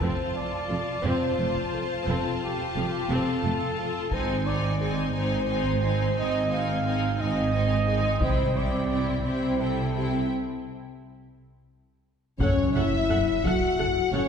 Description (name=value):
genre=cinematic, epic orchestral film score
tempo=58 BPM (dotted quarters)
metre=6/8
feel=straight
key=unclear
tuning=A4 = 439 Hz
part: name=warm symphonic violin section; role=melody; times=0.0-14.3 s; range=C#5 to A5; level=-37 LUFS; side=left 3 dB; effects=none
part: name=rich symphonic violin section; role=second line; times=0.0-14.3 s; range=D#4 to F#5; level=-34 LUFS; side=left 4 dB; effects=none
part: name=warm symphonic viola section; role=accompaniment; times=0.0-14.2 s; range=F3 to F#5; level=-33 LUFS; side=left 1 dB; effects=none
part: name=dark trumpet section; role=stabs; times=0.0-14.3 s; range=G4 to F#5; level=-30 LUFS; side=right 2 dB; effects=none
part: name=rich symphonic cello section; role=bass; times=0.0-14.2 s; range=F2 to C3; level=-31 LUFS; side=right 2 dB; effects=none
part: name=warm symphonic double bass section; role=bass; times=0.0-14.2 s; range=F1 to C2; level=-31 LUFS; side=right 2 dB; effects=none
part: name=taiko ensemble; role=drums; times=0.0-8.9, 12.4-14.1 s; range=none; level=-33 LUFS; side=left 1 dB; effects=none
part: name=mellow French horn section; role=sustained chords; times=0.7-14.3 s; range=D#3 to A4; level=-31 LUFS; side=left 4 dB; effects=none
part: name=timpani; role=percussion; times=12.4-13.4 s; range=F#2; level=-33 LUFS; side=left 1 dB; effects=none
part: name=sub drop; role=sound effects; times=12.6-14.3 s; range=none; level=-35 LUFS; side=equal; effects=none
room=wet concert hall reverb, RT60 2.1 s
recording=heard from further back in the room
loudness=-23 LUFS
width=side -7 dB against mid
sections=0.0-12.4 A section; 12.4-14.3 B section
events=break 10.3-12.4; impact 12.4-14.3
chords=0.0 F; 4.1 G#; 8.2 C; 10.3 N.C.; 12.4 F#m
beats=| 0.00 1.03 | 2.07 3.10 | 4.12 5.14 | 6.16 7.18 | 8.21 9.24 | 10.29 11.35 | 12.40 13.44